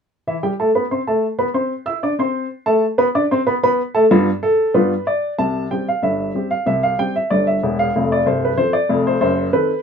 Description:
ragtime piano; 94 BPM; 2/4; straight; C major; A4 = 440 Hz
warm upright piano; solo; 0.3-9.8 s; C1 to E6; -16 LUFS; equal
wet booth ambience, RT60 0.2 s; -16 LUFS; side -6 dB against mid
0.3-5.4 A section; 5.4-9.8 B section
0.3 C; 2.8 G7; 5.4 C; 7.9 F; 9.2 F#dim7
| 0.28 0.92 | 1.55 2.19 | 2.82 3.46 | 4.10 4.74 | 5.38 6.02 | 6.66 7.30 | 7.93 8.57 | 9.21

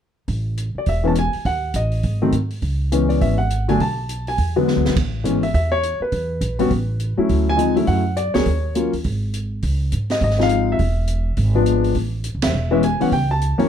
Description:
jazz piano trio; 206 BPM; 4/4; swing 61% on 8ths; A major; A4 = 439 Hz
upright bass; bass; 0.3-13.6 s; E1 to G#2; -21 LUFS; right 1 dB
open jazz drum kit; drums; 0.3-13.6 s; hi-hat, kick drum, ride cymbal, snare drum; -27 LUFS; right 3 dB
warm baby grand piano; melody; 0.8-13.7 s; F#2 to A5; -19 LUFS; left 2 dB
light reverb; dark, warm production; -17 LUFS; side -9 dB against mid
0.3-5.0 A section; 5.0-13.7 B section
drum fill 4.7; band accent 12.4
0.3 Amaj7(no3); 1.5 D#dim; 2.0 G#5; 2.6 C#m7; 3.8 Asus2/B; 4.4 E9; 5.0 Amaj9; 6.1 E5; 6.7 Asus2; 7.3 Dmaj9; 8.5 D#m7; 9.0 N.C.; 9.6 C#maj9; 10.8 E7b9; 12.0 Amaj7(no3); 13.1 C#(b5, no3)
| 0.28 0.57 0.87 1.16 | 1.45 1.74 2.04 2.33 | 2.62 2.91 3.21 3.50 | 3.79 4.08 4.38 4.67 | 4.96 5.25 5.54 5.83 | 6.13 6.42 6.71 7.00 | 7.29 7.58 7.88 8.17 | 8.46 8.75 9.04 9.33 | 9.62 9.92 10.21 10.50 | 10.79 11.08 11.37 11.66 | 11.96 12.25 12.54 12.83 | 13.12 13.41

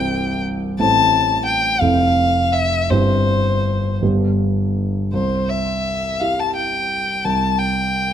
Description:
classical, romantic duo for violin and grand piano; 56 BPM (dotted quarters); 6/8; uneven beats, rubato; C major; A4 = 440 Hz
rich violin; melody; 0.0-8.1 s; C5 to A5; -18 LUFS; left 3 dB
dark concert grand piano; accompaniment; 0.0-8.1 s; C1 to C5; -19 LUFS; right 1 dB
moderate recital hall reverb, RT60 1.4 s; close, detailed microphones; -16 LUFS; side -9 dB against mid
0.0-5.1 A section; 5.1-8.1 B section
0.0 C; 0.8 Am; 1.8 Fmaj7; 2.9 C/G; 4.0 G; 5.1 C; 7.2 D7(no3)/C (rootless)
| 0.79 1.80 | 2.90 4.01 | 5.12 6.20 | 7.24

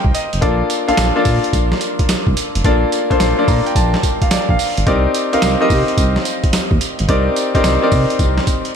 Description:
R&B, new jack swing; 108 BPM; 4/4; swing 66% on 16ths; A4 = 440 Hz
clear concert grand piano; accompaniment; 0.0-8.8 s; Bb3 to Bb5; -16 LUFS; left 2 dB; shimmer reverb
boom bap sampler-style drum kit; drums; 0.0-8.7 s; hi-hat, kick drum, snare drum, tambourine; -18 LUFS; right 1 dB
smooth gliding synth bass; bass; 0.1-8.4 s; F1 to C3; -18 LUFS; equal
light reverb; -13 LUFS; side -7 dB against mid
0.0-8.8 A section
grand piano fill 0.0-0.4, 3.2-4.9
0.4 Bbmaj7; 4.9 Cm9
| 0.42 0.98 1.53 2.09 | 2.64 3.20 3.75 4.31 | 4.87 5.42 5.98 6.53 | 7.09 7.64 8.20

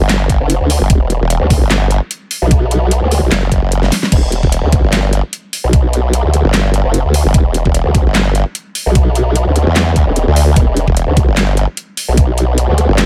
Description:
heavy wobble dubstep; 149 BPM; 4/4; swing 55% on 16ths, half-time; E minor; A4 = 440 Hz
formant-sweep wobble bass; bass; 0.0-13.1 s; E1 to E2; -15 LUFS; equal; chorus, overdrive
dubstep drum kit; drums; 0.1-13.1 s; crash cymbal, handclaps, hi-hat, snare drum; -20 LUFS; equal
electronic kick drum; drums; 0.3-12.3 s; -14 LUFS; equal
formant-sweep wobble bass; bass; 0.4-12.9 s; E1 to D2; -15 LUFS; equal; chorus, overdrive
little or no reverb; -13 LUFS; mono
0.0-4.1 A section; 4.1-13.1 A section
drop 0.0-4.1, 4.1-13.1; drum fill 3.8-4.1
0.0 E5
0.09 0.50 | 0.90 1.30 1.71 2.11 | 2.51 2.91 3.31 3.72 | 4.12 4.52 4.93 5.33 | 5.73 6.13 6.54 6.94 | 7.34 7.75 8.15 8.55 | 8.95 9.36 9.76 10.16 | 10.56 10.97 11.37 11.77 | 12.17 12.58 12.98

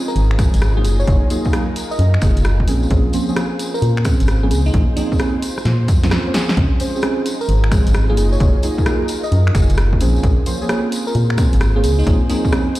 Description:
UK garage, two-step garage; 131 BPM; 4/4; swing 66% on 16ths; Bb minor; A4 = 441 Hz
soft string machine; sustained chords; 0.0-12.8 s; Eb4 to C5; -30 LUFS; right 1 dB; ensemble chorus, sidechain pumping
deep mellow chord stab; stabs; 0.0-12.7 s; F3 to C5; -22 LUFS; right 1 dB; chorus, ping-pong delay
bell-like FM electric piano; melody; 0.1-12.8 s; Eb4 to Eb5; -26 LUFS; equal; chorus, phaser, ping-pong delay
tambourine; percussion; 0.1-12.8 s; -34 LUFS; left 2 dB
organ-like FM bass; bass; 0.2-12.2 s; Gb1 to Bb2; -15 LUFS; equal
punchy analog drum machine; drums; 0.2-12.8 s; finger snaps, hi-hat, rim click, snare drum; -25 LUFS; equal
electronic kick drum; drums; 0.4-12.5 s; -17 LUFS; equal
light reverb; played on a big sound system in a bare room, stone room reverb, vinyl crackle; -14 LUFS; side -16 dB against mid
0.0-12.8 A section
drum fill 5.7-6.6
0.0 Dbmaj7; 0.8 Gbmaj13; 2.7 Bbm9; 6.6 Dbmaj7; 8.2 Gbmaj13; 10.0 Bbm9
0.16 0.62 | 1.07 1.53 1.99 2.45 | 2.91 3.36 3.82 4.28 | 4.74 5.20 5.65 6.11 | 6.57 7.03 7.49 7.94 | 8.40 8.86 9.32 9.78 | 10.23 10.69 11.15 11.61 | 12.07 12.53

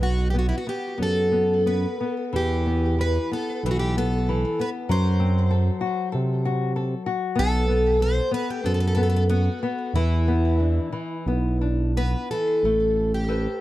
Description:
fado-style ballad; 85-98 BPM; 4/4; rubato; E minor; A4 = 439 Hz
picked plugged-in twelve-string acoustic guitar; melody; 0.0-13.6 s; E4 to C5; -26 LUFS; equal; tape echo
nylon-string guitar; accompaniment; 0.0-13.6 s; E3 to C5; -27 LUFS; left 3 dB
smooth synth bass; bass; 0.0-13.5 s; A1 to C3; -22 LUFS; right 1 dB
little or no reverb; dark, warm production; -21 LUFS; side -15 dB against mid
0.0-12.6 A section
0.0 B5; 2.3 Em; 4.9 F#dim; 7.4 B5; 9.9 E5; 12.6 Amadd9
0.34 0.99 1.65 | 2.32 2.98 3.63 4.27 | 4.88 5.50 6.13 6.76 | 7.38 8.01 8.64 9.29 | 9.94 10.59 11.26 11.95 | 12.63 13.28

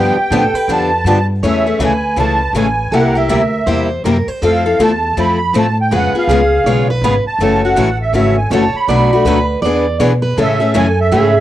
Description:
acoustic string swing (jazz manouche); 161 BPM; 4/4; swing 62% on 8ths; A major; A4 = 440 Hz
musette accordion; melody; 0.0-11.4 s; E5 to B5; -17 LUFS; right 2 dB; cassette tape
picked steel-string acoustic guitar; second line; 0.0-11.4 s; G4 to D5; -19 LUFS; right 2 dB; cassette tape, plate reverb
picked steel-string acoustic guitar; accompaniment; 0.0-11.3 s; B2 to A4; -16 LUFS; left 4 dB; cassette tape
picked steel-string acoustic guitar; accompaniment; 0.0-11.3 s; B2 to B4; -23 LUFS; right 4 dB; cassette tape, plate reverb
upright bass; bass; 0.0-11.4 s; F#1 to B2; -18 LUFS; equal
moderate small room ambience, RT60 0.5 s; home recording on cassette; -11 LUFS; side -13 dB against mid
0.0-1.4 A section; 1.4-11.4 B section
0.0 G9; 1.4 Amaj7; 2.9 C7; 4.4 Fmaj7; 5.9 C#7; 7.4 F#m7; 8.9 Bm7; 9.6 E7; 10.4 Amaj7
0.31 0.68 1.06 | 1.43 1.80 2.17 2.55 | 2.92 3.29 3.67 4.04 | 4.41 4.79 5.16 5.53 | 5.90 6.28 6.65 7.02 | 7.39 7.77 8.14 8.51 | 8.88 9.26 9.63 10.00 | 10.38 10.75 11.12

